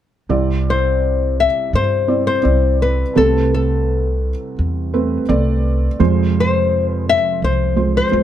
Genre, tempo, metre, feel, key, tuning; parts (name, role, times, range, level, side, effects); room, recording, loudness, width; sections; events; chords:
folk; 84 BPM; 4/4; straight; C major; A4 = 443 Hz
felt-muted upright piano; accompaniment; 0.3-8.2 s; F1 to D5; -19 LUFS; right 4 dB
upright bass; bass; 0.3-8.2 s; C2 to G2; -18 LUFS; equal
nylon-string guitar; melody; 0.7-8.2 s; A4 to E5; -17 LUFS; left 6 dB; slapback echo
little or no reverb; close, detailed microphones; -14 LUFS; side -10 dB against mid
0.3-8.2 A section
0.3 Cadd9; 3.2 Amadd9/C; 6.0 Fm